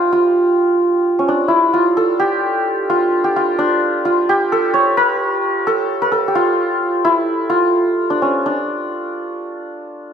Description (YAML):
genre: persian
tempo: 86 BPM (dotted quarters)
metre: 6/8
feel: straight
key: D avaz esfahan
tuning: A4 = 440 Hz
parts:
  - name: santur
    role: solo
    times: 0.0-10.1 s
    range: C#4 to C#5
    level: -14 LUFS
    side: equal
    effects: none
room: moderate recital hall reverb, RT60 1.5 s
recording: close, detailed microphones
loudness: -14 LUFS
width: side -7 dB against mid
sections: 0.0-9.8 A section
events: none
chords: none